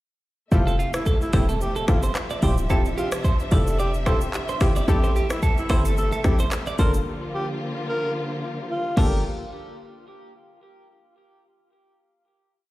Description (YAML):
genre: afrobeats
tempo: 110 BPM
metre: 4/4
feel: swing 55% on 16ths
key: G dorian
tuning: A4 = 440 Hz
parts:
  - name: breathy alto saxophone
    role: melody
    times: 0.5-9.2 s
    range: E4 to Bb4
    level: -30 LUFS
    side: equal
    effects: tape echo
  - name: analog pluck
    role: accompaniment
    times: 0.5-9.2 s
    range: Bb3 to A4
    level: -31 LUFS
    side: left 2 dB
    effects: chorus
  - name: warm studio string section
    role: sustained chords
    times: 0.5-9.2 s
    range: C3 to E5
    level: -31 LUFS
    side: left 1 dB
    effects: none
  - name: short 808-style bass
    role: bass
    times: 0.5-9.2 s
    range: D1 to A1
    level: -22 LUFS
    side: equal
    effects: none
  - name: afro-pop drum kit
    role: drums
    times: 0.5-9.1 s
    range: crash cymbal, finger snaps, handclaps, hi-hat, kick drum, rim click, shaker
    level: -24 LUFS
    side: equal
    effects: none
  - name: twelve-string electric guitar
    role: riff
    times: 0.7-9.2 s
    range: F4 to D5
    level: -30 LUFS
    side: right 4 dB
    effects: tape echo
room: digital ambience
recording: played on a big sound system in a bare room, large studio reverb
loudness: -20 LUFS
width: side -17 dB against mid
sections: 0.5-9.2 chorus; 9.2-11.4 final hit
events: break 7.1-9.2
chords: 0.5 Fmaj9; 2.4 Dm11; 4.9 Am7; 6.8 Gm7; 9.2 N.C.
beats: | 0.52 1.06 1.61 2.16 | 2.70 3.25 3.79 4.34 | 4.88 5.43 5.97 6.52 | 7.07 7.61 8.16 8.70